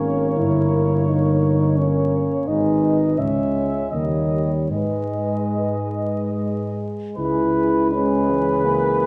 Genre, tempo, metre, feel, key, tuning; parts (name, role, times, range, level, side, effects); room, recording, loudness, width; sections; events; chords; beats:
classical, hymn-like piece for brass band; 67-86 BPM; 3/4; rubato; G# minor; A4 = 439 Hz
dark cornet; melody; 0.0-9.1 s; B4 to E5; -29 LUFS; equal
dark French horn section; second line; 0.0-9.1 s; G#4 to C#5; -29 LUFS; equal
clear euphonium; accompaniment; 0.0-9.1 s; E3 to A#3; -30 LUFS; equal
mellow euphonium; accompaniment; 0.0-9.1 s; G#3 to E4; -26 LUFS; equal
dark tuba; bass; 0.0-9.1 s; G1 to G#2; -25 LUFS; equal
wet recital hall reverb, RT60 1.5 s; heard from further back in the room, vinyl crackle, nothing above 10.6 kHz; -20 LUFS; mono
0.0-7.2 A section; 7.2-9.1 B section
0.4 D#7/G; 2.5 G#m; 3.2 C#m; 3.9 D#7; 4.7 G#m; 7.2 C#m7
| 0.37 1.07 1.78 | 2.48 3.19 3.93 | 4.71 5.52 6.33 | 7.17 7.92 8.64